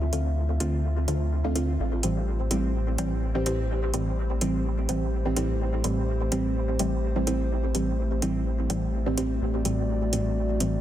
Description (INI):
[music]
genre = dub techno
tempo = 126 BPM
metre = 4/4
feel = swing 54% on 16ths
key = unclear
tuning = A4 = 440 Hz
[part]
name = dark analog pad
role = sustained chords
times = 0.0-10.8 s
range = A3 to E5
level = -34 LUFS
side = equal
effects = chorus
[part]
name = soft dub sub bass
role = bass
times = 0.0-10.8 s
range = A1 to D2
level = -27 LUFS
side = equal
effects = none
[part]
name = filtered dub chord stab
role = stabs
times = 0.1-10.7 s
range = A2 to F4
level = -28 LUFS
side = right 1 dB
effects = chorus, phaser, dub echo
[part]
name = electronic hi-hat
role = drums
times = 0.1-10.7 s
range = none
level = -31 LUFS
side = equal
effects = overdrive
[sound]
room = moderate echo chamber reverb, RT60 2.1 s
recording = dense, heavily limited modern master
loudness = -24 LUFS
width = side -12 dB against mid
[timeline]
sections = 0.0-10.8 A section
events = none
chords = 0.0 Dm7; 1.8 Am7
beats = 0.36 0.84 1.32 | 1.79 2.27 2.75 3.22 | 3.70 4.17 4.65 5.13 | 5.60 6.08 6.56 7.03 | 7.51 7.98 8.46 8.94 | 9.41 9.89 10.37